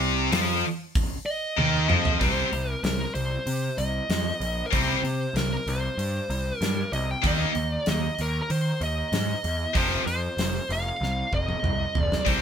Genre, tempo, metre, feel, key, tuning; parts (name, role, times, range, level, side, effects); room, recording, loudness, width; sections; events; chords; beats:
hard rock; 96 BPM; 4/4; straight; C minor; A4 = 441 Hz
heavy high-gain guitar; riff; 0.0-12.4 s; F2 to Eb4; -26 LUFS; left 8 dB; distortion
high-gain distorted guitar; riff; 0.0-12.4 s; F2 to Eb4; -30 LUFS; right 8 dB; distortion
fuzz picked electric bass; bass; 0.0-12.4 s; F1 to Eb3; -28 LUFS; equal; overdrive
gated 80s drum kit; drums; 0.3-12.4 s; hi-hat, kick drum, snare drum, toms; -28 LUFS; equal
smooth overdriven lead guitar; melody; 1.3-12.4 s; Bb4 to G5; -29 LUFS; equal
light reverb; band playing live in one room; -23 LUFS; side -8 dB against mid
0.0-2.2 A section; 2.2-12.4 B section
drum fill 1.6-2.2, 11.0-12.3
0.0 Cm; 7.2 Eb5; 9.7 F5
0.33 0.96 1.58 | 2.21 2.84 3.47 4.10 | 4.72 5.35 5.98 6.61 | 7.24 7.87 8.49 9.12 | 9.75 10.38 11.00 11.63 | 12.26